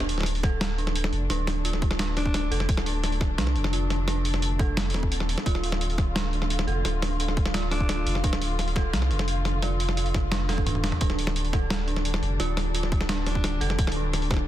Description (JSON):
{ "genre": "half-time drum and bass", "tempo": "173 BPM", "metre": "4/4", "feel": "half-time", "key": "D minor", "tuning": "A4 = 440 Hz", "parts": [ { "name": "muted studio string section", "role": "sustained chords", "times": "0.0-14.5 s", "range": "D3 to F4", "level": "-35 LUFS", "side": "left 3 dB", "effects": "sidechain pumping" }, { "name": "saturated sub bass", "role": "bass", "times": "0.0-14.5 s", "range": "D1 to C2", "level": "-27 LUFS", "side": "equal", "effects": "none" }, { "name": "boom bap sampler-style drum kit", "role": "drums", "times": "0.0-14.4 s", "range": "hi-hat, snare drum, toms", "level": "-29 LUFS", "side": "equal", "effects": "soft clipping on snare" }, { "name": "dark detuned synth bell", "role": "arpeggios", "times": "0.4-14.5 s", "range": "C4 to A4", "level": "-33 LUFS", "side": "right 4 dB", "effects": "chorus, dub echo" }, { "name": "electronic kick drum", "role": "drums", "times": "0.4-14.4 s", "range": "none", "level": "-26 LUFS", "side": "equal", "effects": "overdrive" }, { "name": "growling alto saxophone", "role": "melody", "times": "2.2-2.7, 7.7-8.2, 13.3-13.8 s", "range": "D4", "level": "-37 LUFS", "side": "left 2 dB", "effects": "dub echo" } ], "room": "little or no reverb", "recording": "dense, heavily limited modern master", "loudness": "-23 LUFS", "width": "side -13 dB against mid", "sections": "0.0-14.5 A section", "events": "drum fill 10.5-11.0; kick drops out 10.7-11.0", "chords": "0.0 Dm", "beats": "0.26 0.61 0.95 | 1.30 1.65 2.00 2.34 | 2.69 3.04 3.38 3.73 | 4.08 4.42 4.77 5.12 | 5.46 5.81 6.16 6.50 | 6.85 7.20 7.54 7.89 | 8.24 8.58 8.93 9.28 | 9.62 9.97 10.32 10.66 | 11.01 11.36 11.71 12.05 | 12.40 12.75 13.09 13.44 | 13.79 14.13" }